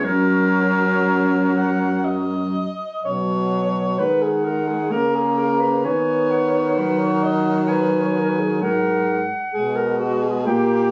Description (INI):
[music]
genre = classical, lyrical piece for single-reed quartet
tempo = 60-66 BPM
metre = 3/4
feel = rubato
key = B major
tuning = A4 = 444 Hz
[part]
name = clear clarinet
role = melody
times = 0.0-10.9 s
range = A#4 to A#5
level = -27 LUFS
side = equal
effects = none
[part]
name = dark alto saxophone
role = second line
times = 0.0-10.9 s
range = C#4 to F#5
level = -26 LUFS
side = equal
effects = none
[part]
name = mellow tenor saxophone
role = accompaniment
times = 0.0-10.9 s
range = F#3 to B3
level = -25 LUFS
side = equal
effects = none
[part]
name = warm baritone saxophone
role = bass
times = 0.0-10.9 s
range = F#2 to D#3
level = -24 LUFS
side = equal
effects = none
[sound]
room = light reverb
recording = recorded on a phone in the room, club reverb, compression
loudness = -20 LUFS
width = mono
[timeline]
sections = 0.0-3.0 A section; 3.0-10.9 B section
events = none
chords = 0.0 F#; 3.0 B; 4.9 A#m7/C#; 5.8 B/D#; 8.6 G#m7